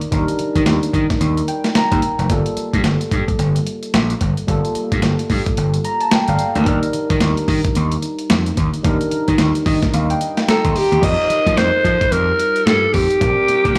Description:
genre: R&B, new jack swing.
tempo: 110 BPM.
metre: 4/4.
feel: swing 60% on 16ths.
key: unclear.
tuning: A4 = 440 Hz.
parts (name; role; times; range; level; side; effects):
tine electric piano; accompaniment; 0.0-13.8 s; G3 to C6; -24 LUFS; equal; lush chorus.
dusty soul sampler-style drum kit; drums; 0.0-13.8 s; crash cymbal, hi-hat, kick drum, snare drum; -22 LUFS; equal; overdrive.
gritty slap bass; bass; 0.1-13.8 s; F1 to F3; -21 LUFS; equal; overdrive.
growling alto saxophone; melody; 10.5-13.8 s; G4 to Eb5; -18 LUFS; equal; digital delay.
room: little or no reverb.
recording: small room ambience.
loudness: -17 LUFS.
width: mono.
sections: 0.0-11.0 A section; 11.0-13.8 B section.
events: tine electric piano fill 1.2-2.3, 5.6-6.7, 9.4-11.0.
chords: 0.0 Ebmaj7; 2.3 Gm9; 6.7 Ebmaj7; 11.0 F9sus4; 13.2 Bb69.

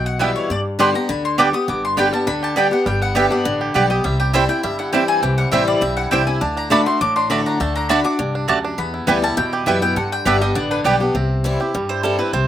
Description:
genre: bluegrass.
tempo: 203 BPM.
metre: 4/4.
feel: straight.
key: G major.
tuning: A4 = 443 Hz.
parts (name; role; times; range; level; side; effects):
mandolin; melody; 0.0-10.8 s; B4 to Eb6; -22 LUFS; left 2 dB; slapback echo.
picked swing-style acoustic guitar; accompaniment; 0.0-12.5 s; E2 to G4; -21 LUFS; left 2 dB; slapback echo.
upright bass; bass; 0.0-12.5 s; G1 to G2; -24 LUFS; equal; none.
bluegrass banjo; melody; 0.2-12.5 s; D3 to G4; -26 LUFS; right 5 dB; slapback echo.
mandolin; stabs; 0.2-12.5 s; A3 to A5; -18 LUFS; right 6 dB; none.
room: little or no reverb.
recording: recorded outdoors, with no room sound.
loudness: -16 LUFS.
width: side -11 dB against mid.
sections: 0.0-1.7 A section; 1.7-11.1 A section; 11.1-12.5 A section.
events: mandolin solo 0.0-11.1, 11.1-12.5.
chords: 0.5 G; 4.0 C; 6.4 D; 8.8 Em; 10.0 G; 11.1 C.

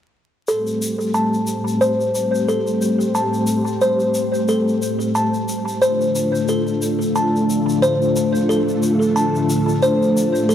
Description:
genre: trip hop.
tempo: 90 BPM.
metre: 4/4.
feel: swing 57% on 16ths.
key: A minor.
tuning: A4 = 438 Hz.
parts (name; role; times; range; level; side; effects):
string machine, cellos; sustained chords; 0.5-10.5 s; A3 to C5; -19 LUFS; left 1 dB; ensemble chorus.
music box; arpeggios; 0.5-10.5 s; A4 to A5; -20 LUFS; equal; low-pass filter, analog delay.
tube shaker; percussion; 0.5-10.5 s; none; -33 LUFS; left 3 dB; analog delay.
room: moderate echo chamber reverb, RT60 2.3 s.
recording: echo-heavy mix, vinyl crackle.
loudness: -16 LUFS.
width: side -10 dB against mid.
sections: 0.5-10.5 A section.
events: filter sweep on string machine 0.5-10.5; filter sweep on music box 0.5-10.5.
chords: 0.5 Am7; 5.8 Dm/A.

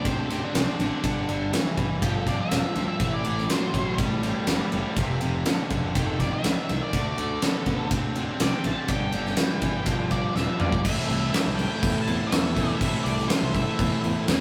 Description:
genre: classic rock.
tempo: 122 BPM.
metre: 4/4.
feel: straight.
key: A minor.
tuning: A4 = 440 Hz.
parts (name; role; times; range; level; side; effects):
octave-fuzz lead guitar; melody; 0.0-14.0 s; D4 to A5; -35 LUFS; equal; distortion.
overdriven electric guitar; riff; 0.0-14.4 s; F2 to C4; -35 LUFS; equal; none.
sludgy distorted guitar; riff; 0.0-14.4 s; F2 to E4; -32 LUFS; equal; overdrive.
modern bright picked electric bass; bass; 0.0-14.4 s; E1 to E2; -34 LUFS; equal; none.
huge arena drum kit; drums; 0.1-14.4 s; crash cymbal, kick drum, ride cymbal, snare drum, toms; -28 LUFS; equal; none.
tonewheel organ; sustained chords; 3.0-14.4 s; C4 to D5; -45 LUFS; equal; none.
room: moderate stone room reverb, RT60 1.1 s.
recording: rough rehearsal-room recording, warm saturation.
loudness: -25 LUFS.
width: mono.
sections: 0.0-10.9 A section; 10.9-14.4 B section.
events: lead electric guitar solo 0.0-10.9; drum fill 10.4-10.9.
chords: 0.0 D5; 1.0 G5; 3.0 Am; 5.0 F; 6.9 Dm; 8.9 G; 10.9 Am.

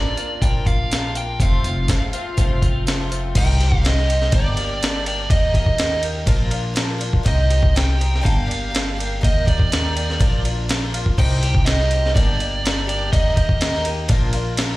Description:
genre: folk rock and heartland rock.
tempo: 123 BPM.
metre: 4/4.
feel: straight.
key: C minor.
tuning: A4 = 441 Hz.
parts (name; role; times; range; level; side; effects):
overdriven slide guitar; melody; 0.0-13.8 s; D5 to G5; -25 LUFS; right 2 dB; digital delay.
picked twelve-string acoustic guitar; accompaniment; 0.0-14.8 s; F2 to G4; -28 LUFS; left 3 dB; slapback echo.
breakbeat sampler-style drum kit; drums; 0.2-14.7 s; crash cymbal, hi-hat, kick drum, ride cymbal, snare drum; -20 LUFS; equal; none.
upright bass; bass; 0.4-14.8 s; F1 to Eb2; -21 LUFS; equal; none.
room: digital ambience.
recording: live gig heard through the venue's PA, club reverb.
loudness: -16 LUFS.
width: side -19 dB against mid.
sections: 0.0-3.4 A section; 3.4-14.8 B section.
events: none.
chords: 0.0 Bb; 1.4 F; 3.4 Cm; 4.3 Gm; 5.3 Eb; 6.3 Bb; 7.3 Cm; 8.2 Gm; 9.2 Eb; 10.2 Bb; 11.2 Cm; 12.2 Gm; 13.1 Eb; 14.1 Bb.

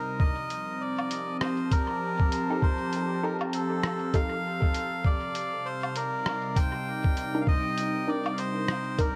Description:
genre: ambient dub.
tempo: 99 BPM.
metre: 4/4.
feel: swing 59% on 16ths.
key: unclear.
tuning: A4 = 439 Hz.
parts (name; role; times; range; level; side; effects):
melodica; melody; 0.0-9.2 s; A4 to G5; -34 LUFS; equal; dub echo.
warbly tape-like pad; sustained chords; 0.0-9.2 s; C3 to A5; -35 LUFS; equal; chorus, built-in reverb.
electronic kick drum; drums; 0.2-9.1 s; none; -27 LUFS; equal; studio reverb.
lo-fi sampler-style drum kit; drums; 0.5-9.1 s; hi-hat, rim click, woodblock; -37 LUFS; equal; studio reverb, dub echo.
filtered dub chord stab; stabs; 2.5-9.2 s; D4 to Bb4; -37 LUFS; equal; phaser, dub echo.
room: light reverb, digital ambience.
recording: echo-heavy mix.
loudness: -28 LUFS.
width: mono.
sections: 0.0-9.2 A section.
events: none.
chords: 0.2 F7; 5.0 Cm7.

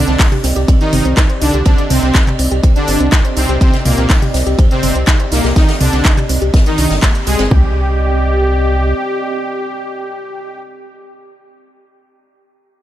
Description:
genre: melodic techno.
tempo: 123 BPM.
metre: 4/4.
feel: straight.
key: C minor.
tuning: A4 = 439 Hz.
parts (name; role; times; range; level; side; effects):
soft supersaw; melody; 0.0-10.6 s; Bb2 to Ab4; -19 LUFS; equal; sidechain pumping, digital delay.
dark analog pad; sustained chords; 0.1-10.6 s; C4 to Eb5; -24 LUFS; right 1 dB; chorus, sidechain pumping.
round analog bass; bass; 0.0-8.9 s; G1 to C2; -16 LUFS; equal; sidechain pumping.
woody wave-folded pluck; arpeggios; 0.1-7.7 s; Bb3 to Eb6; -22 LUFS; right 2 dB; chorus, sidechain pumping, digital delay.
house drum kit; drums; 0.1-7.5 s; handclaps, hi-hat, toms; -19 LUFS; equal; none.
unplugged drum kit; drums; 0.1-7.5 s; hi-hat, ride cymbal, snare drum; -27 LUFS; equal; high-pass filter on cymbals, high-pass filter on hats, high-pass filter on snare, high-pass filter on room.
house drum kit; drums; 0.2-7.6 s; kick drum, toms; -11 LUFS; equal; none.
room: small room ambience.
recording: lossy compression artefacts.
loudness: -11 LUFS.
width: side -13 dB against mid.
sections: 0.0-7.5 A section; 7.5-11.4 B section.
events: drop 0.0-7.5; band accent 7.0.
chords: 0.0 Cmadd9.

